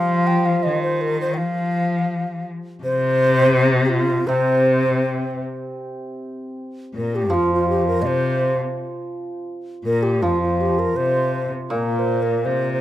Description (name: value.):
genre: chinese traditional, Chinese chamber ensemble.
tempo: 81 BPM.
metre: 2/4.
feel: rubato.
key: C yu mode.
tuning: A4 = 439 Hz.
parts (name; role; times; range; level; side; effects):
xiao; melody; 0.0-12.8 s; F4 to G5; -21 LUFS; equal; none.
rich cello; second line; 0.0-12.8 s; F2 to F3; -22 LUFS; left 2 dB; none.
hammered dulcimer; accompaniment; 0.0-12.8 s; Bb2 to G3; -25 LUFS; right 2 dB; none.
room: light reverb.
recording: close, detailed microphones.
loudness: -17 LUFS.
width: side -13 dB against mid.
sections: 0.0-5.8 A section; 5.8-12.8 B section.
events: none.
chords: none.